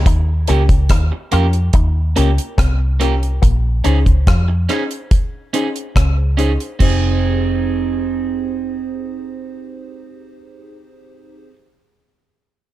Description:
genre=lovers rock reggae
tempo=71 BPM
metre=4/4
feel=straight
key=F minor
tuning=A4 = 440 Hz
part: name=vintage muted fingered electric bass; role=bass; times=0.0-11.5 s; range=F1 to F2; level=-16 LUFS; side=equal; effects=none
part: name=electric guitar with an envelope filter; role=riff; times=0.1-6.2 s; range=Bb3 to F4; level=-28 LUFS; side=left 10 dB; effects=none
part: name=deep reggae drum kit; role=drums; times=0.1-7.0 s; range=crash cymbal, hi-hat, kick drum, rim click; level=-16 LUFS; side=equal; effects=gated reverb
part: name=FM electric piano with soft pad layer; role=accompaniment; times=0.5-11.5 s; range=Db4 to C5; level=-27 LUFS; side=left 3 dB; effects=chorus, tremolo
part: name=electric guitar at the edge of break-up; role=stabs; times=0.5-11.6 s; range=Bb3 to Ab4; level=-22 LUFS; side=right 7 dB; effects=none
room=small room ambience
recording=none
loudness=-14 LUFS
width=side -14 dB against mid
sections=0.1-6.8 A section; 6.8-10.2 B section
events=none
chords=0.1 Eb7; 3.4 Bbm11; 6.8 Fm7

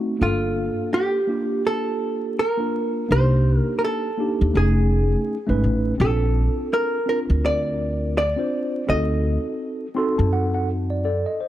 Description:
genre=hip hop, jazz-hop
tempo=83 BPM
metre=4/4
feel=swing 60% on 16ths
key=unclear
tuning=A4 = 440 Hz
part: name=mellow tine electric piano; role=accompaniment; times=0.0-11.5 s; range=A3 to C6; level=-24 LUFS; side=equal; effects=medium stereo tremolo
part: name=hollow-body jazz guitar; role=melody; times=0.2-10.3 s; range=F4 to Eb5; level=-24 LUFS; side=right 1 dB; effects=none
part: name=upright bass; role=bass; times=0.2-11.2 s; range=F1 to F#2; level=-20 LUFS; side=equal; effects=none
room=small room ambience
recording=dark, warm production, vinyl crackle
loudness=-19 LUFS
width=side -13 dB against mid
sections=0.0-11.5 A section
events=tine electric piano fill 9.6-11.5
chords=0.2 Gm7; 3.1 Cm7; 4.5 F7alt; 6.0 Bbmaj7; 8.9 D7b9

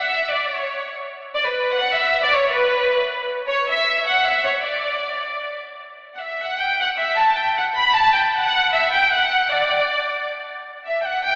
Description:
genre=mexican folk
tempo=154 BPM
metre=3/4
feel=swing 54% on 8ths, rubato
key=D major, G major from 5.8 s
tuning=A4 = 441 Hz
part: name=clear symphonic violin section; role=solo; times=0.0-11.4 s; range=B4 to B5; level=-20 LUFS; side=equal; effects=none
room=wet church reverb, RT60 3.5 s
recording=recorded in a church or concert hall, AM radio sound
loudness=-20 LUFS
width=mono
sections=0.0-5.8 A section; 5.8-11.4 B section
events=none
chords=none

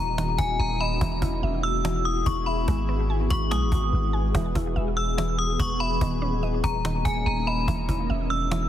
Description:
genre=hip hop, atmospheric cloud-rap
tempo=144 BPM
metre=4/4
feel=half-time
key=E lydian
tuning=A4 = 439 Hz
part: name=metallic FM bell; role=melody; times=0.0-8.7 s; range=G#5 to E6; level=-29 LUFS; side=left 1 dB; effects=chorus, phaser, low-pass filter, digital delay
part: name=shimmering ambient pad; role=sustained chords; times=0.0-8.7 s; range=D#3 to D#5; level=-30 LUFS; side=left 2 dB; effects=chorus, built-in reverb
part: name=mallet-like synth pluck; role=arpeggios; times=0.0-8.7 s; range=D#3 to E6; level=-34 LUFS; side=right 4 dB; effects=chorus, low-pass filter, digital delay
part: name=long sustained 808-style bass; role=bass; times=0.0-8.7 s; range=D#1 to B1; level=-26 LUFS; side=equal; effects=none
part: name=cajon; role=drums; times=0.2-8.6 s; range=none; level=-31 LUFS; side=equal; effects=none
room=little or no reverb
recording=heavily compressed radio sound, multiband compression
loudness=-22 LUFS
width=side -11 dB against mid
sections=0.0-8.7 A section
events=break 0.0-4.3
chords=0.0 D#m7; 1.0 E; 2.7 G#m7; 4.3 E; 6.0 D#m7; 7.7 E

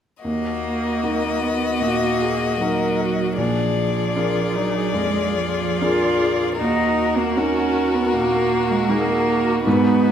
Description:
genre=classical, slow romantic movement for piano quintet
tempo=76 BPM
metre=4/4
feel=uneven beats, rubato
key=Eb minor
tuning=A4 = 440 Hz
part: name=clear violin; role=melody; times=0.2-10.1 s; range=Bb4 to Eb5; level=-26 LUFS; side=left 8 dB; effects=none
part: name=clear violin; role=second line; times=0.2-10.1 s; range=Gb4 to Ab4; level=-28 LUFS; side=left 4 dB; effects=none
part: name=rich cello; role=second line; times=0.2-10.1 s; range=F3 to F4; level=-22 LUFS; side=right 4 dB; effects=none
part: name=clear baby grand piano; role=accompaniment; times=0.2-10.1 s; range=Bb1 to Bb4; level=-24 LUFS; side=equal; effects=none
part: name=clear viola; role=accompaniment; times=1.8-10.1 s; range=D4 to Bb4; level=-26 LUFS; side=right 2 dB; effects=none
room=moderate scoring stage reverb, RT60 1.8 s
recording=none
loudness=-18 LUFS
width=side -8 dB against mid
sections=0.2-10.1 A section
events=none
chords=0.2 Ebm; 3.4 Bb7; 6.6 Ebm

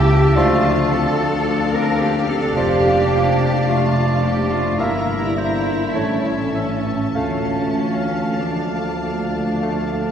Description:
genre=classical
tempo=48-56 BPM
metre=4/4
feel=rubato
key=D minor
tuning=A4 = 441 Hz
part: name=warm symphonic violin section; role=melody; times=0.0-10.1 s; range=A5 to Bb5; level=-30 LUFS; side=left 2 dB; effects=none
part: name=clear oboe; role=second line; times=0.0-10.1 s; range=C5 to F5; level=-28 LUFS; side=right 1 dB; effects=none
part: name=dark clarinet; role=second line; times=0.0-10.1 s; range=E3 to D4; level=-27 LUFS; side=equal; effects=none
part: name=warm symphonic violin section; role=second line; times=0.0-10.1 s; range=E5 to F5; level=-29 LUFS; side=left 4 dB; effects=none
part: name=warm symphonic viola section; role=accompaniment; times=0.0-10.1 s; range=A3 to E4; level=-30 LUFS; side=right 1 dB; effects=none
part: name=dark French horn section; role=sustained chords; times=0.0-10.1 s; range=E3 to F4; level=-26 LUFS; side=left 2 dB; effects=none
part: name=mellow tuba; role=bass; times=0.0-10.1 s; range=F1 to D2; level=-24 LUFS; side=equal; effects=none
part: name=warm studio cello section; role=bass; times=0.0-10.1 s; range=C#4 to Bb4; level=-23 LUFS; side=right 1 dB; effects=none
part: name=warm symphonic double bass section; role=bass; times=0.0-10.1 s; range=F1 to D2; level=-24 LUFS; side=equal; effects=none
part: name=silver concert flute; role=second line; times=0.3-10.1 s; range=C#5 to F5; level=-30 LUFS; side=left 1 dB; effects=none
part: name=clear bassoon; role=accompaniment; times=0.4-10.1 s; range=F3 to Bb3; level=-27 LUFS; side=right 1 dB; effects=none
room=wet concert hall reverb, RT60 2.5 s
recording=heard from further back in the room, faint mains hum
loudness=-16 LUFS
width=side -8 dB against mid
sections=0.0-10.1 A section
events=none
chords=0.4 Dm; 2.6 Dm/F; 4.8 Edim/G; 5.9 A; 7.1 Dm

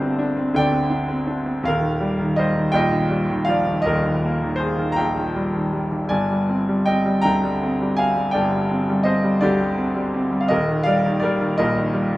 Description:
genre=classical, lyrical solo piano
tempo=55 BPM (dotted quarters)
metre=6/8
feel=rubato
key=Eb major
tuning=A4 = 440 Hz
part: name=bright concert grand piano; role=solo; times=0.0-12.2 s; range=Eb1 to Bb5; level=-18 LUFS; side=equal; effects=none
room=moderate studio reverb, RT60 0.6 s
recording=none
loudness=-18 LUFS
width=side -17 dB against mid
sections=0.0-12.2 A section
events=none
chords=0.0 Gsus4; 1.7 Ebadd9; 6.1 Gsus4; 10.5 Eb

